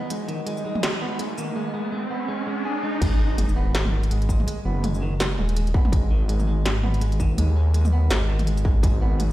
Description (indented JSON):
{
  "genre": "half-time drum and bass",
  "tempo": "165 BPM",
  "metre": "4/4",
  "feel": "swing 58% on 16ths, half-time",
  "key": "G# minor",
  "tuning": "A4 = 441 Hz",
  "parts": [
    { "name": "electric guitar at the edge of break-up", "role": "arpeggios", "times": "0.0-9.3 s", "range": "D#3 to G#4", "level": "-30 LUFS", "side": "right 2 dB", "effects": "low-pass filter, dub echo" },
    { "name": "riser and sub drop", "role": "sound effects", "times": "0.0-4.5 s", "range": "none", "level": "-29 LUFS", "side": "equal", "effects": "none" },
    { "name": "pulsing gated texture", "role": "texture", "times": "0.0-1.6 s", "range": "D#4 to D#5", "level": "-37 LUFS", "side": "equal", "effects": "chorus, built-in reverb" },
    { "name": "industrial drum kit", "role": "drums", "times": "0.1-9.3 s", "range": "crash cymbal, hi-hat, shaker, snare drum, toms", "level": "-28 LUFS", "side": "equal", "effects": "small room ambience" },
    { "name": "dark detuned saw bass", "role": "bass", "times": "3.0-9.3 s", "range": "D#1 to D#2", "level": "-21 LUFS", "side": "equal", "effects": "none" },
    { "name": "electronic kick drum", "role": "drums", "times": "3.0-8.9 s", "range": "none", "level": "-21 LUFS", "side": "equal", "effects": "distortion, small room ambience" }
  ],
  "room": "light reverb, digital ambience",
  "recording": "played on a big sound system in a bare room, stone room reverb",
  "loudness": "-20 LUFS",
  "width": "side -15 dB against mid",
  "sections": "0.0-3.0 A section; 3.0-9.3 B section",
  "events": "build-up 0.0-3.0; riser 0.0-3.0; drop 3.0-9.3; impact 3.0-4.5",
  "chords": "0.0 G#m",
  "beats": "| 0.11 0.47 0.83 1.20 | 1.56 1.93 2.29 2.65 | 3.02 3.38 3.74 4.11 | 4.47 4.83 5.20 5.56 | 5.92 6.29 6.65 7.01 | 7.38 7.74 8.11 8.47 | 8.83 9.20"
}